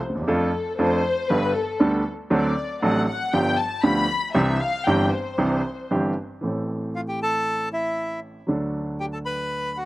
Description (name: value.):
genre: tango.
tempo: 117 BPM.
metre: 4/4.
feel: rubato.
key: C major, A minor from 6.4 s.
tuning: A4 = 440 Hz.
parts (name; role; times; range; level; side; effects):
warm grand piano; accompaniment; 0.1-9.9 s; G1 to A4; -22 LUFS; right 1 dB; none.
dark studio violin section; second line; 0.3-5.9 s; A4 to B5; -26 LUFS; left 3 dB; none.
bandoneon; melody; 7.0-9.9 s; E4 to B5; -24 LUFS; equal; none.
room: little or no reverb.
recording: recorded outdoors, with no room sound.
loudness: -21 LUFS.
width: side -18 dB against mid.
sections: 0.0-6.4 A section; 6.4-9.9 B section.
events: violin section solo 0.0-6.4.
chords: 0.3 Dm/F; 1.3 Gadd9; 2.3 D7; 3.3 G7; 4.3 Cadd9; 6.4 Am; 8.5 D.